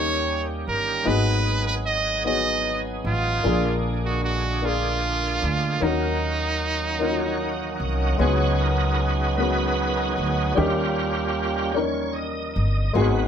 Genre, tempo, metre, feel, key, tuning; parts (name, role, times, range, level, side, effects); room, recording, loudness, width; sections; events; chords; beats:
gospel; 50 BPM (dotted quarters); 6/8; straight; Eb minor; A4 = 440 Hz
brilliant trumpet; melody; 0.0-7.8 s; Eb4 to Eb5; -25 LUFS; right 3 dB
dark baby grand piano; accompaniment; 0.0-13.3 s; Ab2 to Db5; -27 LUFS; left 4 dB
bright tonewheel organ; sustained chords; 0.0-13.3 s; D3 to Eb5; -27 LUFS; right 2 dB; slow rotary speaker, overdrive, chorus vibrato
upright bass; bass; 0.0-13.3 s; G1 to Eb2; -26 LUFS; equal
moderate studio ambience, RT60 0.4 s; band playing live in one room; -21 LUFS; side -8 dB against mid
0.0-8.2 A section; 8.2-13.3 B section
tonewheel organ solo 8.2-13.3
0.0 Eb7; 1.1 Abm7; 3.4 Bb7; 5.8 Ebm7; 8.2 Db7sus4; 10.6 Eb7
| 1.07 2.26 | 3.44 4.63 | 5.82 7.01 | 8.20 9.38 | 10.57 11.76 | 12.95